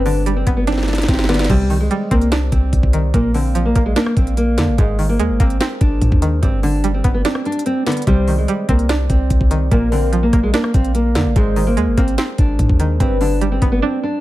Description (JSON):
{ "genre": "hip hop, trap", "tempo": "146 BPM", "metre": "4/4", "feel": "half-time", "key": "C minor", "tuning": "A4 = 440 Hz", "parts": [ { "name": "soft octave-layered synth lead", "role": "second line", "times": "0.0-1.5, 8.1-13.4 s", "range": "Bb4 to D5", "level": "-27 LUFS", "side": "left 5 dB", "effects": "chorus, phaser, ping-pong delay" }, { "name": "string-like resonator pluck", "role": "accompaniment", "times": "0.0-14.2 s", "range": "G2 to D4", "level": "-22 LUFS", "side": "right 2 dB", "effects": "chorus, low-pass filter" }, { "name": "glass harmonica", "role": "sustained chords", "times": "0.0-14.2 s", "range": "G3 to F5", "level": "-30 LUFS", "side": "right 3 dB", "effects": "none" }, { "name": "warm 808-style bass", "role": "bass", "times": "0.0-13.8 s", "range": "G1 to Ab2", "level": "-18 LUFS", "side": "equal", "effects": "none" }, { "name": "nylon-string guitar", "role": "melody", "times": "0.1-14.2 s", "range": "G3 to D4", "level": "-20 LUFS", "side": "equal", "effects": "low-pass filter, ping-pong delay" }, { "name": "trap drum kit", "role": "drums", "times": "0.1-13.7 s", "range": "crash cymbal, hi-hat, kick drum, rim click, snare drum", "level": "-18 LUFS", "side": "equal", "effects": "none" } ], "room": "little or no reverb", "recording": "none", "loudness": "-14 LUFS", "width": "side -16 dB against mid", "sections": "0.0-1.5 A section; 1.5-14.2 A section", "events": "drum fill 0.7-1.5; break 7.2-8.1, 13.8-14.2", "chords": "0.0 G; 1.5 Cmadd9; 3.1 Bb; 4.8 Abadd9; 6.4 G; 8.1 Cmadd9; 9.7 Bb; 11.4 Abadd9; 13.0 G", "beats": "0.26 0.67 1.08 | 1.50 1.91 2.32 2.73 | 3.14 3.55 3.96 4.37 | 4.78 5.19 5.61 6.02 | 6.43 6.84 7.25 7.66 | 8.07 8.48 8.89 9.30 | 9.71 10.13 10.54 10.95 | 11.36 11.77 12.18 12.59 | 13.00 13.41 13.82" }